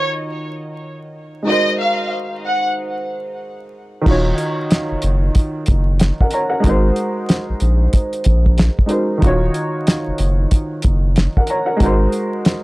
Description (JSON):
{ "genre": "hip hop, boom-bap hip-hop", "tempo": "93 BPM", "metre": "4/4", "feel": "swing 63% on 16ths", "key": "Eb dorian", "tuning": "A4 = 436 Hz", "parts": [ { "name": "warm studio violin section", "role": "melody", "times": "0.0-2.6 s", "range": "Eb5 to Gb5", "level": "-20 LUFS", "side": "equal", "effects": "high-pass filter, low-pass filter, tape echo" }, { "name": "warm upright piano", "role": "accompaniment", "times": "0.0-12.6 s", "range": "Eb3 to Bb5", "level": "-20 LUFS", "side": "equal", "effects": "cassette tape, high-pass filter, low-pass filter" }, { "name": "saturated sub bass", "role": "bass", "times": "4.1-12.1 s", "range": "Eb1 to Bb1", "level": "-16 LUFS", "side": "equal", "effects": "tube saturation" }, { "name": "cloth-damped thuddy drum kit", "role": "drums", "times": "4.1-12.6 s", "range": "crash cymbal, hi-hat, kick drum, snare drum", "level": "-15 LUFS", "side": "equal", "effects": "none" } ], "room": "little or no reverb", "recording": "dry, gritty hardware recording, transformer saturation, vinyl crackle", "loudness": "-14 LUFS", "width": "side -20 dB against mid", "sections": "0.0-4.1 A section; 4.1-12.6 B section", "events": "none", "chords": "0.0 Ebm7; 1.5 Ab9; 4.1 Ebm7; 6.6 Ab9; 9.2 Ebm7; 11.8 Ab9" }